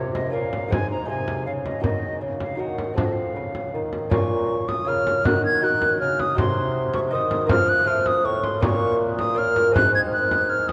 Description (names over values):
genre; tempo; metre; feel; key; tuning
classical, renaissance-style consort dance; 160 BPM; 3/4; straight; Bb minor; A4 = 440 Hz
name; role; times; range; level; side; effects
concert flute; melody; 0.0-10.7 s; Db5 to Ab6; -26 LUFS; equal; none
lute; accompaniment; 0.0-10.7 s; Ab2 to Eb5; -29 LUFS; equal; none
warm bassoon; bass; 0.0-10.7 s; Ab2 to F3; -29 LUFS; equal; none
frame drum; percussion; 0.2-10.7 s; none; -29 LUFS; equal; none
room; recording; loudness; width
wet cathedral reverb, RT60 5.3 s; dark, warm production; -22 LUFS; mono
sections
0.0-4.1 A section; 4.1-10.7 A section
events
none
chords
0.0 Bbm; 0.7 Ab; 1.8 Ebm; 3.0 F; 4.1 Bbm; 5.3 Ebm; 6.4 Cdim; 7.5 Fsus4; 7.9 F; 8.6 Bbm; 9.8 Ab